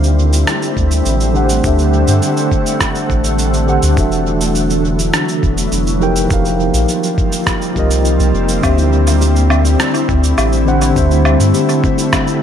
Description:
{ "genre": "sunset chillout", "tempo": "103 BPM", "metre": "4/4", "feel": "straight", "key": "unclear", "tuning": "A4 = 441 Hz", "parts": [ { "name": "mellow tine electric piano", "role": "accompaniment", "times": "0.0-12.4 s", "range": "D3 to G5", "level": "-18 LUFS", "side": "equal", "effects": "medium stereo tremolo, auto-pan, low-pass filter, tape echo" }, { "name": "shimmering ambient pad", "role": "sustained chords", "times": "0.0-12.4 s", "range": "D3 to F#5", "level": "-18 LUFS", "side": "equal", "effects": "chorus, built-in reverb" }, { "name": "round analog bass", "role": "bass", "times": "0.0-11.5 s", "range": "E1 to G2", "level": "-14 LUFS", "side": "equal", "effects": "none" }, { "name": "electronic shaker, rim click and woodblock", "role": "drums", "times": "0.0-12.4 s", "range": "none", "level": "-20 LUFS", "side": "right 1 dB", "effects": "tape echo" }, { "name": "electronic kick drum", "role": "drums", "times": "0.8-12.2 s", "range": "none", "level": "-18 LUFS", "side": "equal", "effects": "none" }, { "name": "kalimba", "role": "arpeggios", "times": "8.6-12.4 s", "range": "C4 to G4", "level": "-19 LUFS", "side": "left 5 dB", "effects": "tape echo" } ], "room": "light reverb", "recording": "echo-heavy mix", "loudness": "-11 LUFS", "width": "side -9 dB against mid", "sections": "0.0-12.4 A section", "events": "filter sweep on tine electric piano 0.0-12.4", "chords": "0.0 D9sus4; 4.0 E9sus4; 6.0 F9sus4; 8.6 D9sus4" }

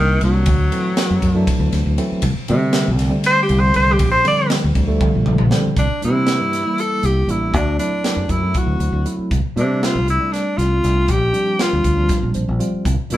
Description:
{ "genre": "electric jazz fusion", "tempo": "237 BPM (eighths)", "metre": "7/8", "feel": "straight", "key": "C mixolydian", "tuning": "A4 = 440 Hz", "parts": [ { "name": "clear tenor saxophone", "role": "melody", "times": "0.0-13.2 s", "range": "Eb3 to D5", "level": "-19 LUFS", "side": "equal", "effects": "none" }, { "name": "tine electric piano", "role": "accompaniment", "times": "0.0-13.2 s", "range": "D3 to C5", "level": "-22 LUFS", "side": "equal", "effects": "medium tremolo" }, { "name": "fingered electric bass", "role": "bass", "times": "0.0-13.2 s", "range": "A1 to C3", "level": "-18 LUFS", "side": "equal", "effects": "none" }, { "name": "crisp fusion drum kit", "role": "drums", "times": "0.2-13.2 s", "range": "hi-hat, kick drum, ride cymbal, snare drum, toms", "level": "-22 LUFS", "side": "equal", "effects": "none" } ], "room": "moderate studio reverb, RT60 0.8 s", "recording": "band playing live in one room", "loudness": "-15 LUFS", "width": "side -14 dB against mid", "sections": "0.0-5.8 A section; 5.8-13.2 B section", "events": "tenor saxophone solo 0.0-5.8; drum fill 5.0-5.8; tine electric piano fill 12.1-12.9", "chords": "0.5 D7; 2.2 Gsus24/C; 4.0 Bb69; 5.8 C9; 7.5 D7; 9.3 F6/C; 11.1 Bb69" }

